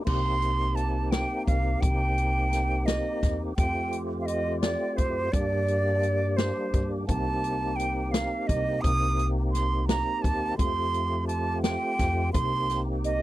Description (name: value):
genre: progressive instrumental, band music in an uneven meter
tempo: 171 BPM (eighths)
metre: 5/8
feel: straight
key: C dorian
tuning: A4 = 436 Hz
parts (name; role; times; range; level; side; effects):
- tonewheel organ; accompaniment; 0.0-13.2 s; G3 to G4; -31 LUFS; left 1 dB; overdrive, chorus vibrato, slow rotary speaker
- bright silver concert flute; melody; 0.1-13.2 s; C5 to Eb6; -29 LUFS; right 3 dB; none
- upright bass; bass; 0.1-13.2 s; C2 to G2; -29 LUFS; equal; none
- open jazz drum kit; drums; 0.1-13.2 s; crash cymbal, hi-hat, kick drum, snare drum; -28 LUFS; equal; none
room: little or no reverb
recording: dry, close 1970s-style studio recording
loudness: -24 LUFS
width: side -15 dB against mid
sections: 0.1-13.2 A section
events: none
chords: 0.1 Cm7; 3.6 Fadd9; 5.3 Gm; 7.1 Cm7; 10.6 Fadd9; 12.3 Cm7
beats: | 0.06 0.41 0.77 1.12 1.47 | 1.82 2.17 2.52 2.87 3.22 | 3.58 3.93 4.28 4.63 4.98 | 5.33 5.68 6.03 6.38 6.73 | 7.08 7.44 7.79 8.14 8.49 | 8.84 9.19 9.54 9.89 10.24 | 10.59 10.95 11.30 11.65 12.00 | 12.35 12.70 13.05